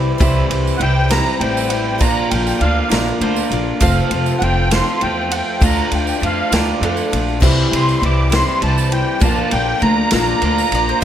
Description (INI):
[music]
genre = folk rock and heartland rock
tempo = 67 BPM (dotted quarters)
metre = 6/8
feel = straight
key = C mixolydian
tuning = A4 = 441 Hz
[part]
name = picked steel-string acoustic guitar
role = accompaniment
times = 0.0-11.0 s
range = Bb2 to C5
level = -25 LUFS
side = left 8 dB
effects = none
[part]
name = hand-pumped harmonium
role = sustained chords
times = 0.0-11.0 s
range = C4 to D5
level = -30 LUFS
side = right 2 dB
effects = none
[part]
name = electric guitar through a small old amp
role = riff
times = 0.0-11.0 s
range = F2 to F4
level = -22 LUFS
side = right 2 dB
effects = none
[part]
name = upright bass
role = bass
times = 0.0-10.9 s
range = F1 to F2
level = -19 LUFS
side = equal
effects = none
[part]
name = dark upright piano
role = accompaniment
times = 0.2-11.0 s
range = A3 to A5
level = -28 LUFS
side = right 3 dB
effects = none
[part]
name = vintage drum kit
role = drums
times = 0.2-10.9 s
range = crash cymbal, kick drum, ride cymbal, snare drum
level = -20 LUFS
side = equal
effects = none
[part]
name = tambourine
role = percussion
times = 0.2-10.7 s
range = none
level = -32 LUFS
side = right 8 dB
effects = none
[part]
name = musette accordion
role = melody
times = 0.8-11.0 s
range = F5 to D6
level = -20 LUFS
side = equal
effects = slapback echo
[part]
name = mandolin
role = second line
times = 2.9-7.4, 10.7-11.0 s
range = A4 to F5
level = -26 LUFS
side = right 2 dB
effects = none
[sound]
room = light reverb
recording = none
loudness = -14 LUFS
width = side -10 dB against mid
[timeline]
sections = 0.2-11.0 A section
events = accordion solo 0.2-11.0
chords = 0.2 C; 2.0 Bb; 3.8 F; 5.6 Dm; 7.4 C; 9.2 Bb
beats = | 0.21 1.11 | 2.01 2.91 | 3.81 4.71 | 5.62 6.52 | 7.42 8.32 | 9.22 10.12 | 11.03